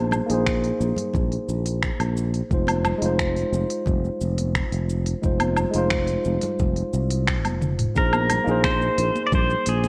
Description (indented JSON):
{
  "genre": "sunset chillout",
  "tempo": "88 BPM",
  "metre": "4/4",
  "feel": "straight",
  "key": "F minor",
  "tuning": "A4 = 440 Hz",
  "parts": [
    { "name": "tine electric piano", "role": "accompaniment", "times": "0.0-9.9 s", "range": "Ab3 to C5", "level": "-28 LUFS", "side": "equal", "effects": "digital delay" },
    { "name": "sustaining fretless electric bass", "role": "bass", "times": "0.0-9.9 s", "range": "F1 to C2", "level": "-27 LUFS", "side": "equal", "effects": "none" },
    { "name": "smooth R&B drum kit", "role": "drums", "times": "0.1-9.9 s", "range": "finger snaps, hi-hat, shaker, toms, woodblock", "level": "-30 LUFS", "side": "equal", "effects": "none" },
    { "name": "congas", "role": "percussion", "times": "0.1-9.9 s", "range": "none", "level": "-34 LUFS", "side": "equal", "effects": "none" },
    { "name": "electronic kick drum", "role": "drums", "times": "0.5-9.5 s", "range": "none", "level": "-27 LUFS", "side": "equal", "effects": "none" },
    { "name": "pedal steel guitar", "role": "melody", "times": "8.0-9.9 s", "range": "Ab4 to D5", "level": "-26 LUFS", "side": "equal", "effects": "digital delay" }
  ],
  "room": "light reverb, digital ambience",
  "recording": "worn, warbling old tape, cassette tape, warbly pitch drift",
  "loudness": "-23 LUFS",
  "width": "mono",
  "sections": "0.0-8.0 A section; 8.0-9.9 B section",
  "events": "drum fill 7.5-8.0",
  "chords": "0.0 Bb9sus4; 2.5 Fm7; 8.0 Bb9sus4"
}